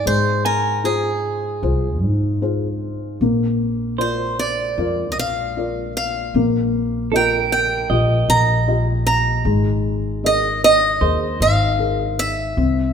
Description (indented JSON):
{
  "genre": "acoustic folk-pop ballad",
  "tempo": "77 BPM",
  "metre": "4/4",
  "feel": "straight",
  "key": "unclear",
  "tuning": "A4 = 439 Hz",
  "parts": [
    { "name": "picked swing-style acoustic guitar", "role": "melody", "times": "0.0-12.9 s", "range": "Ab4 to Bb5", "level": "-19 LUFS", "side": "right 2 dB", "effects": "none" },
    { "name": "felt-muted upright piano", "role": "accompaniment", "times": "0.0-12.9 s", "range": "Ab3 to Eb5", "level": "-23 LUFS", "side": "left 4 dB", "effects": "none" },
    { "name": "clean electric guitar", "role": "arpeggios", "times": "0.0-12.5 s", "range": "Bb4 to Ab5", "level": "-24 LUFS", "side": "right 5 dB", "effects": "harmonic tremolo" },
    { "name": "upright bass", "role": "bass", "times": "0.1-12.9 s", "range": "Ab1 to Ab2", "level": "-22 LUFS", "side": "equal", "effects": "none" }
  ],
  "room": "moderate concert hall reverb, RT60 2.2 s",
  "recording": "minimal, uncompressed stereo recording",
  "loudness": "-17 LUFS",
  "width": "side -7 dB against mid",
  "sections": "0.0-12.9 A section",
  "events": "none",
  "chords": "0.1 Fm/Ab; 3.2 Bb; 6.3 Ebadd9/Bb; 9.4 Absus2",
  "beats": "| 0.06 0.84 1.62 2.41 | 3.20 3.99 4.78 5.56 | 6.34 7.12 7.90 8.67 | 9.45 10.23 11.01 11.79 | 12.57"
}